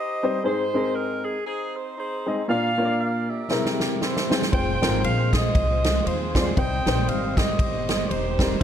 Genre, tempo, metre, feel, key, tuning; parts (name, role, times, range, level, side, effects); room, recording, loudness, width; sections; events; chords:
uptempo gospel; 118 BPM; 4/4; swing 58% on 8ths; A4 = 440 Hz
warm saxophone section; melody; 0.0-8.6 s; C4 to G5; -27 LUFS; right 1 dB
warm upright piano; accompaniment; 0.2-8.6 s; Ab2 to Eb5; -25 LUFS; left 2 dB
swinging big-band drum kit; drums; 3.5-8.6 s; kick drum, ride cymbal, snare drum; -24 LUFS; equal
overdriven tonewheel organ; sustained chords; 4.5-8.6 s; Eb3 to C4; -33 LUFS; right 4 dB; slow rotary speaker, chorus vibrato
upright bass; bass; 4.5-8.6 s; Fb1 to Eb2; -26 LUFS; equal
light reverb, small room ambience; dark, warm production; -21 LUFS; side -9 dB against mid
0.0-8.6 A section
drum fill 3.5-4.5
0.4 Ab; 2.5 Bb; 3.5 C7b13; 4.5 Fm; 6.6 Cm